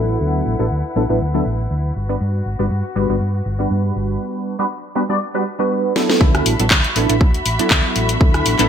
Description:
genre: filtered disco house.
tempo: 120 BPM.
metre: 4/4.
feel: swing 54% on 16ths.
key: D major.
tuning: A4 = 445 Hz.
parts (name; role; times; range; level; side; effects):
funky polysynth comp; accompaniment; 0.0-8.7 s; F#3 to D5; -20 LUFS; right 1 dB; chorus, phaser, sidechain pumping, low-pass filter.
muted studio string section; sustained chords; 0.0-8.7 s; E4 to B5; -26 LUFS; left 1 dB; vintage 12-bit sampler grit, sidechain pumping, low-pass filter.
hollow-body short-scale fingered electric bass; bass; 0.0-8.7 s; G1 to G2; -20 LUFS; equal; sidechain pumping, low-pass filter.
house drum kit; drums; 6.0-8.7 s; handclaps, hi-hat, rim click, snare drum; -18 LUFS; left 1 dB; low-pass filter on snare, sidechain pumping on hats, low-pass filter on hats, low-pass filter on room, gated reverb.
electronic kick drum; drums; 6.2-8.3 s; none; -14 LUFS; equal; none.
room: light reverb.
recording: bright 1980s-style digital production.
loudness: -15 LUFS.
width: side -8 dB against mid.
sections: 0.0-6.2 A section; 6.2-8.7 B section.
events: filter sweep 0.0-6.2; drum fill 6.0; drop 6.2-8.7.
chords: 0.0 D69; 2.0 Gmaj7; 6.2 D69.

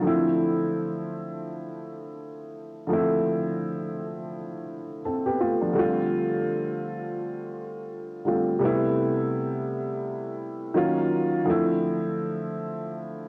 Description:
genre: hip hop.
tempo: 84 BPM.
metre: 4/4.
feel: swing 58% on 16ths.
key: unclear.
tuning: A4 = 442 Hz.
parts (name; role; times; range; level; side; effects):
dark upright piano; solo; 0.0-13.3 s; C3 to A4; -27 LUFS; equal; cassette tape, low-pass filter.
room: moderate spring reverb, RT60 1.6 s, small room ambience.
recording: home recording on cassette.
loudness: -27 LUFS.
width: mono.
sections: 0.0-5.8 A section; 5.8-13.3 B section.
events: none.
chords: 0.0 Dm7; 5.8 G7sus4; 8.6 Am9; 10.8 D#m7; 11.5 Dm7.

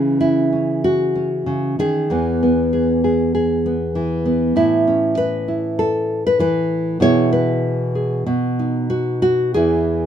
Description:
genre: folk, solo fingerstyle acoustic guitar.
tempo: 96 BPM.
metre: 4/4.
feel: rubato.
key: E major.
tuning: A4 = 440 Hz.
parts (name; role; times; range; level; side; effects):
nylon-string guitar; solo; 0.0-10.1 s; E2 to C#5; -16 LUFS; equal; none.
room: light reverb.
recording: minimal, uncompressed stereo recording.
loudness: -16 LUFS.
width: side -9 dB against mid.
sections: 0.0-9.5 A section.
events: none.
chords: 0.0 C#m; 2.1 E; 4.5 A; 7.0 E/B; 8.3 B; 9.5 N.C..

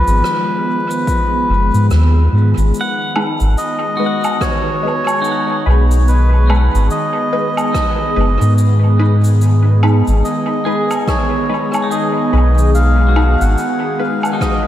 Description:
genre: ambient dub.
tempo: 72 BPM.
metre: 4/4.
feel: swing 59% on 16ths.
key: G# dorian.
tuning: A4 = 440 Hz.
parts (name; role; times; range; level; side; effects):
melodica; melody; 0.0-14.7 s; B4 to F#5; -20 LUFS; equal; dub echo.
airy breathy pad; sustained chords; 0.0-14.7 s; D#3 to G#4; -20 LUFS; equal; chorus, phaser.
pedal steel guitar; arpeggios; 0.0-14.7 s; E#3 to F#5; -26 LUFS; equal; ping-pong delay.
soft dub sub bass; bass; 0.0-13.6 s; F#1 to G#2; -11 LUFS; equal; none.
cabasa, rim click and woodblock; drums; 0.1-14.6 s; none; -25 LUFS; equal; dub echo.
electronic kick drum; drums; 1.1-14.6 s; none; -20 LUFS; equal; overdrive.
filtered dub chord stab; stabs; 3.2-14.2 s; G#3 to B4; -24 LUFS; left 1 dB; phaser, wide subtle chorus, dub echo.
room: moderate lush hall reverb, RT60 2.4 s.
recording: dreamy mix soaked in reverb, vinyl crackle.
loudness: -12 LUFS.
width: side -12 dB against mid.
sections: 0.0-2.7 A section; 2.7-14.7 B section.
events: none.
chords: 0.0 G#m.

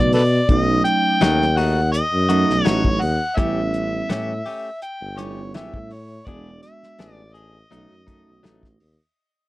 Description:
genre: straight-eighth soul blues.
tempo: 83 BPM.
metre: 4/4.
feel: straight.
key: unclear.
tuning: A4 = 440 Hz.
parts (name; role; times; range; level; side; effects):
overdriven harmonica; melody; 0.0-8.8 s; A4 to G5; -22 LUFS; left 1 dB; none.
bell-like tine electric piano; accompaniment; 0.0-8.8 s; C#3 to F#4; -24 LUFS; right 5 dB; none.
warm tuba; bass; 0.0-9.0 s; E1 to B2; -22 LUFS; equal; none.
cloth-damped thuddy drum kit; drums; 0.1-9.0 s; hi-hat, kick drum, snare drum; -20 LUFS; left 1 dB; none.
direct-recorded clean electric guitar; stabs; 1.2-8.7 s; E3 to G#4; -27 LUFS; left 5 dB; none.
room: little or no reverb.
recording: dry, close 1970s-style studio recording.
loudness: -16 LUFS.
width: side -17 dB against mid.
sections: 0.0-9.2 A section.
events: fade-out 0.0-9.2.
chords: 0.0 B7; 3.4 A7; 6.3 E7; 7.7 B7.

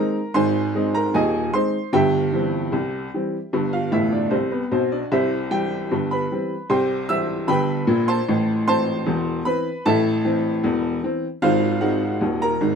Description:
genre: ragtime piano.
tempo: 76 BPM.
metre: 2/4.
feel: straight.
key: C major.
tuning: A4 = 440 Hz.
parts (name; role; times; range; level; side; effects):
clear upright piano; solo; 0.0-12.8 s; Eb1 to E6; -19 LUFS; equal; none.
room: moderate small room ambience, RT60 0.5 s.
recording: minimal, uncompressed stereo recording.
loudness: -19 LUFS.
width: side -6 dB against mid.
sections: 0.0-12.8 A section.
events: upright piano fill 3.9-5.1.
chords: 0.0 Ab; 1.9 C/G; 3.5 G; 5.1 C; 8.3 Am; 11.4 Ab7.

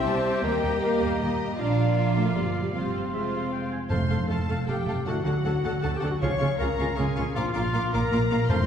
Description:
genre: cinematic.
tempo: 157 BPM.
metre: 3/4.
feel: straight.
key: unclear.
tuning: A4 = 440 Hz.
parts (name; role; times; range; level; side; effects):
rich symphonic violin section; melody; 0.0-8.7 s; Eb5 to Db6; -38 LUFS; left 2 dB; none.
clear oboe; second line; 0.0-8.6 s; E5 to Ab5; -38 LUFS; equal; none.
mellow clarinet; second line; 0.0-8.7 s; F4 to F5; -32 LUFS; left 4 dB; none.
mellow hollow concert flute; second line; 0.0-8.6 s; Ab5 to C6; -38 LUFS; equal; none.
warm symphonic violin section; second line; 0.0-8.6 s; C5 to D6; -39 LUFS; left 3 dB; none.
clear symphonic viola section; accompaniment; 0.0-8.6 s; F#3 to A4; -32 LUFS; equal; none.
mellow trombone section; sustained chords; 0.0-8.7 s; Ab2 to C4; -35 LUFS; right 2 dB; none.
rich studio cello section; bass; 0.0-8.7 s; F2 to D4; -31 LUFS; right 2 dB; none.
rich symphonic double bass section; bass; 0.0-8.7 s; F1 to Eb2; -29 LUFS; right 2 dB; none.
mellow French horn section; sustained chords; 0.1-8.7 s; C4 to D5; -32 LUFS; left 3 dB; none.
timpani; percussion; 3.9-4.4, 8.5-8.7 s; F2; -28 LUFS; equal; none.
room: wet scoring stage reverb, RT60 1.7 s.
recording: heard from further back in the room.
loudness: -23 LUFS.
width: side -8 dB against mid.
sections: 0.0-3.9 A section; 3.9-8.7 B section.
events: none.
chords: 0.4 Eb; 1.6 Bb; 2.7 Fm; 3.9 F; 5.1 D; 6.2 Db; 7.4 Bb.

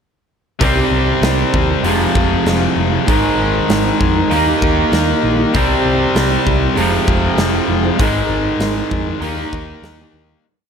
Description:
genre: classic rock.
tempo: 98 BPM.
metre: 4/4.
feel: straight.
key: F minor.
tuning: A4 = 439 Hz.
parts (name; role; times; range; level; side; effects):
picked steel-string acoustic guitar; accompaniment; 0.6-10.5 s; F2 to Bb4; -23 LUFS; equal; none.
overdriven electric guitar; riff; 0.6-10.4 s; F2 to Eb4; -18 LUFS; left 11 dB; none.
overdriven semi-hollow guitar; riff; 0.6-10.4 s; F2 to Eb4; -18 LUFS; right 9 dB; none.
picked electric bass; bass; 0.6-10.3 s; F1 to F2; -20 LUFS; equal; none.
huge arena drum kit; drums; 0.6-10.0 s; hi-hat, kick drum, snare drum; -20 LUFS; equal; none.
room: light reverb.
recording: none.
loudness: -13 LUFS.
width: side -7 dB against mid.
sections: 0.6-10.5 verse.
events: fade-out 8.0-10.5.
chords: 0.6 Cm; 1.8 Fm; 3.1 Abadd9; 4.3 Eb; 5.5 Cm; 6.8 Fm; 8.0 Abadd9; 9.2 Eb.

